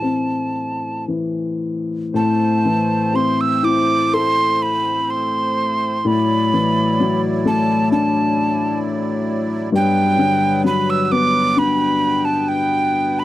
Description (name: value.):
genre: celtic folk, Celtic slow air.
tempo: 54-67 BPM.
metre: 4/4.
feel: rubato.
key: A dorian.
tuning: A4 = 440 Hz.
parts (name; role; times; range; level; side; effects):
breathy mellow mid whistle; melody; 0.0-13.2 s; G5 to E6; -19 LUFS; right 2 dB; none.
dark upright piano; accompaniment; 0.0-13.2 s; G2 to A4; -18 LUFS; left 3 dB; none.
accordion; sustained chords; 2.1-13.2 s; A2 to G5; -27 LUFS; right 3 dB; light tremolo tuning.
room: light reverb.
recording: dry, close 1970s-style studio recording.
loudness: -16 LUFS.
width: side -14 dB against mid.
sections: 0.0-2.1 A section; 2.1-13.2 A section.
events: none.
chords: 0.0 Am; 6.1 Dadd9/A; 9.7 Gmaj7.